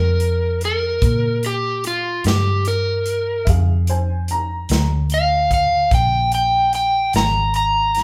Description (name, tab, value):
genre	slow blues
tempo	49 BPM (dotted quarters)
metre	12/8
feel	straight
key	Bb mixolydian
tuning	A4 = 441 Hz
part	overdriven slide guitar	melody	0.0-8.0 s	F4 to Bb5	-20 LUFS	equal	none
part	vintage muted fingered electric bass	bass	0.0-8.0 s	Ab1 to Bb2	-23 LUFS	equal	none
part	natural country drum kit	drums	0.2-8.0 s	hi-hat, kick drum, snare drum	-24 LUFS	equal	none
part	warm upright piano	second line	3.5-4.9 s	Ab4 to Bb5	-29 LUFS	equal	none
room	moderate large studio reverb, RT60 0.8 s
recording	band playing live in one room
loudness	-18 LUFS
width	mono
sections	0.0-8.0 A section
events	none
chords	0.0 Ebsus2 (rootless); 1.0 Bb7